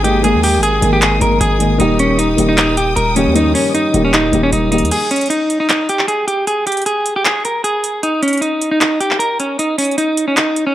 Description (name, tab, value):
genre	hip hop, trap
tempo	154 BPM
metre	4/4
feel	half-time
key	unclear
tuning	A4 = 442 Hz
part	clean electric guitar	melody	0.0-10.7 s	C#4 to A#4	-15 LUFS	equal	low-pass filter
part	dark baby grand piano	accompaniment	0.0-4.9 s	D#3 to A#4	-17 LUFS	left 2 dB	low-pass filter
part	rich studio string section	sustained chords	0.0-4.9 s	A#4 to D#6	-26 LUFS	left 3 dB	none
part	hard-hitting 808-style bass	bass	0.0-4.9 s	D#1 to D#2	-18 LUFS	equal	none
part	trap drum kit	drums	0.0-10.7 s	crash cymbal, handclaps, hi-hat	-18 LUFS	right 1 dB	overdrive
room	light reverb, digital ambience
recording	vinyl crackle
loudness	-12 LUFS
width	side -13 dB against mid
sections	0.0-4.9 A section; 4.9-10.7 B section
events	break 4.9-10.7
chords	0.0 G#sus2; 1.8 D#; 4.9 N.C.